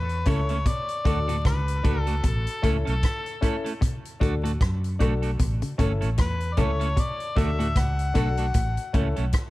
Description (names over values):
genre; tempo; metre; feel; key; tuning
roots reggae; 76 BPM; 4/4; swing 58% on 16ths; unclear; A4 = 443 Hz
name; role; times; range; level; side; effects
mellow harmonica; melody; 0.0-9.3 s; A4 to F#5; -31 LUFS; left 2 dB; tape echo
semi-hollow electric guitar; arpeggios; 0.0-9.1 s; A2 to D3; -34 LUFS; left 3 dB; none
vintage muted fingered electric bass; bass; 0.0-9.3 s; G1 to F#2; -26 LUFS; equal; none
vintage drum kit; drums; 0.1-9.5 s; hi-hat, kick drum, rim click; -25 LUFS; equal; none
clean electric guitar; accompaniment; 0.3-9.2 s; A3 to A4; -33 LUFS; right 4 dB; tape echo
warm upright piano; stabs; 0.3-9.2 s; C#4 to A4; -33 LUFS; left 4 dB; none
room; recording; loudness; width
light reverb, small room ambience; vinyl crackle; -22 LUFS; side -18 dB against mid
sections
0.0-9.5 A section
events
none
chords
0.0 A; 0.7 D; 2.2 A; 3.8 D; 5.4 A; 7.0 D; 8.5 A